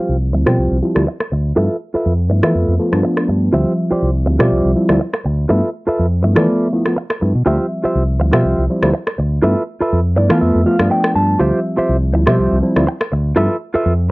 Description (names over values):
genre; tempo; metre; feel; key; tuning
filtered disco house; 122 BPM; 4/4; swing 54% on 16ths; D dorian; A4 = 438 Hz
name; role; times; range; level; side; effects
reed electric piano; accompaniment; 0.0-13.5 s; F3 to E5; -17 LUFS; equal; phaser, low-pass filter
direct-recorded clean electric guitar; riff; 0.0-13.9 s; F4 to A5; -17 LUFS; right 1 dB; low-pass filter
fingered electric bass; bass; 0.1-14.1 s; C2 to E3; -16 LUFS; equal; tube saturation, low-pass filter
electronic rim click; drums; 0.5-13.1 s; none; -20 LUFS; equal; low-pass filter on hats, cassette tape, low-pass filter on perc, low-pass filter on snare
room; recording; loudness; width
moderate small room reverb, RT60 0.5 s; home recording on cassette; -13 LUFS; side -23 dB against mid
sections
0.0-14.1 A section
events
filter sweep 0.0-14.1; clean electric guitar fill 9.9-11.4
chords
0.0 Dm11; 1.6 G13; 3.5 Dm11; 5.5 G13; 7.5 Dm11; 9.4 G13; 11.4 Dm11; 13.4 G13